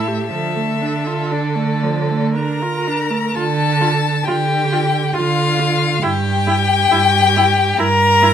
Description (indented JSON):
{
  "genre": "classical, slow romantic movement for string quartet",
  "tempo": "55-69 BPM",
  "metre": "3/4",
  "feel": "rubato",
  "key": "D minor",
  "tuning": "A4 = 444 Hz",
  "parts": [
    { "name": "rich violin", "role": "melody", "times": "0.0-8.3 s", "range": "D5 to Bb5", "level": "-19 LUFS", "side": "left 7 dB", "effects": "none" },
    { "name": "warm violin", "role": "second line", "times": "0.0-8.3 s", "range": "F4 to Bb4", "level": "-20 LUFS", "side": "left 1 dB", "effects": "none" },
    { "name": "warm viola", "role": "accompaniment", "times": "0.0-8.3 s", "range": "F3 to G4", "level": "-23 LUFS", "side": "right 3 dB", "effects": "none" },
    { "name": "rich cello", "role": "bass", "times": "0.0-8.3 s", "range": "G2 to D3", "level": "-20 LUFS", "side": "right 4 dB", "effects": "none" }
  ],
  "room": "light reverb",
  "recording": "close, detailed microphones",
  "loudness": "-14 LUFS",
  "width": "side -9 dB against mid",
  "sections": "0.0-3.4 A section; 3.4-8.3 B section",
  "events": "none",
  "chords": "0.3 Dm; 6.0 Edim/G"
}